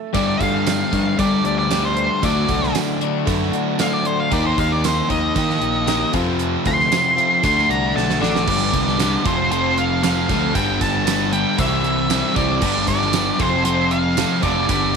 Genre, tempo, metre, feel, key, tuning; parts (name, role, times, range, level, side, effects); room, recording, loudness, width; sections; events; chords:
classic rock; 115 BPM; 4/4; straight; G mixolydian; A4 = 442 Hz
overdriven semi-hollow guitar; riff; 0.0-15.0 s; F2 to C5; -23 LUFS; right 13 dB
octave-fuzz lead guitar; melody; 0.1-15.0 s; C5 to C6; -21 LUFS; equal; distortion, slapback echo
warm upright piano; accompaniment; 0.1-8.4 s; F#4 to F#5; -30 LUFS; left 15 dB
crunchy overdriven guitar; riff; 0.1-15.0 s; F2 to Eb4; -23 LUFS; left 15 dB
growling picked electric bass; bass; 0.1-14.9 s; F1 to G3; -24 LUFS; equal; overdrive
gated 80s drum kit; drums; 0.1-14.8 s; crash cymbal, hi-hat, kick drum, snare drum, tambourine; -24 LUFS; right 5 dB
studio ambience; 1960s-style stereo with parts hard left and right; -16 LUFS; side -6 dB against mid
0.0-8.5 A section; 8.5-15.0 B section
lead electric guitar solo 0.0-8.5; drum fill 8.0-8.5
0.1 Gsus2; 2.2 D; 4.3 Eb; 6.1 F; 7.4 D; 8.5 G; 9.3 F; 10.6 G; 11.6 C; 12.6 G; 13.4 F